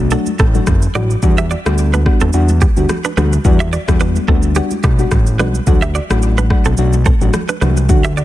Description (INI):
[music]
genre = afrobeats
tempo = 108 BPM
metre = 4/4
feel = swing 55% on 16ths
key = E minor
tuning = A4 = 441 Hz
[part]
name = mellow FM electric piano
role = accompaniment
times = 0.0-8.1 s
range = F#3 to F#4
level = -19 LUFS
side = left 3 dB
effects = chorus, phaser
[part]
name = fat analog bass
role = bass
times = 0.0-8.2 s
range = F#1 to E2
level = -15 LUFS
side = equal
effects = none
[part]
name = direct-recorded clean electric guitar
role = riff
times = 0.1-8.2 s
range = B3 to E5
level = -22 LUFS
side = right 5 dB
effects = ping-pong delay
[part]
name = afro-pop drum kit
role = drums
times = 0.1-8.2 s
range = kick drum, rim click, shaker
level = -15 LUFS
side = equal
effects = soft clipping on snare
[part]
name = congas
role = percussion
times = 0.3-8.0 s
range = none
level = -25 LUFS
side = right 2 dB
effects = none
[sound]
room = little or no reverb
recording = dense, heavily limited modern master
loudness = -11 LUFS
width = side -14 dB against mid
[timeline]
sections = 0.0-8.2 A section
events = none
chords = 0.0 D; 1.2 Em7